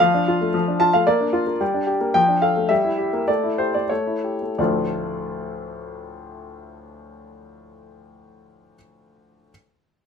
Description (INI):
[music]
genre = classical-period piano sonatina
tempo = 87-112 BPM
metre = 2/4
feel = rubato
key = D minor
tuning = A4 = 440 Hz
[part]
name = clear grand piano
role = solo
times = 0.0-9.5 s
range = D2 to A5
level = -19 LUFS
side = left 1 dB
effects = none
[sound]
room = light reverb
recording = minimal, uncompressed stereo recording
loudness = -18 LUFS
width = side -6 dB against mid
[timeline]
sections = 0.0-4.6 A section; 4.6-7.3 B section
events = slowing down 1.6-4.6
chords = 0.0 Dm/F; 1.1 Bb; 1.6 Gm; 2.2 Dm/F; 2.7 Edim/G; 3.3 A7sus4; 4.6 Dm